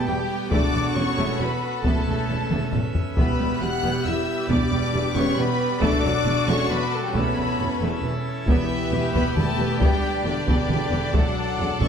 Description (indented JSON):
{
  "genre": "cinematic, epic orchestral film score",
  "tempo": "136 BPM",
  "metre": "3/4",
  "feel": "straight",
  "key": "E dorian",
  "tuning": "A4 = 440 Hz",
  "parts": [
    { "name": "warm symphonic violin section", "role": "melody", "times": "0.0-11.9 s", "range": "D5 to F#6", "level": "-30 LUFS", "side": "left 3 dB", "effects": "none" },
    { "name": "rich symphonic violin section", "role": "second line", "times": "0.0-11.9 s", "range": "G4 to F#5", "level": "-31 LUFS", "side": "left 3 dB", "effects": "none" },
    { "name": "rich symphonic viola section", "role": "accompaniment", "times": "0.0-11.9 s", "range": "C#3 to A4", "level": "-29 LUFS", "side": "right 1 dB", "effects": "none" },
    { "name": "mellow French horn section", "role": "sustained chords", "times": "0.0-11.9 s", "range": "D3 to G4", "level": "-29 LUFS", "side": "left 3 dB", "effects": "none" },
    { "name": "pipe organ, full organ", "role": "sustained chords", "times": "0.0-11.9 s", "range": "G3 to G5", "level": "-30 LUFS", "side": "right 1 dB", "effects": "none" },
    { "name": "clear symphonic double bass section", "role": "bass", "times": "0.1-11.9 s", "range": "E1", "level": "-28 LUFS", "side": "right 3 dB", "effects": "none" },
    { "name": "rich symphonic cello section", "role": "bass", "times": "0.1-11.9 s", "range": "E2", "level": "-30 LUFS", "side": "right 2 dB", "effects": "none" },
    { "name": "taiko ensemble", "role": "drums", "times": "0.5-11.9 s", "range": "none", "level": "-25 LUFS", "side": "left 1 dB", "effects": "none" }
  ],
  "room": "moderate scoring stage reverb, RT60 1.8 s",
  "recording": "none",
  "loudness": "-20 LUFS",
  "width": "side -7 dB against mid",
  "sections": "0.0-8.5 A section; 8.5-11.9 B section",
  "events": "drum fill 2.5-3.2",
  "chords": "0.0 G/E; 0.5 D/E; 1.8 Aadd9/E; 3.2 Em; 4.5 G/E; 5.8 D/E; 7.2 Aadd9/E; 8.5 Em; 9.8 G; 11.1 D/E"
}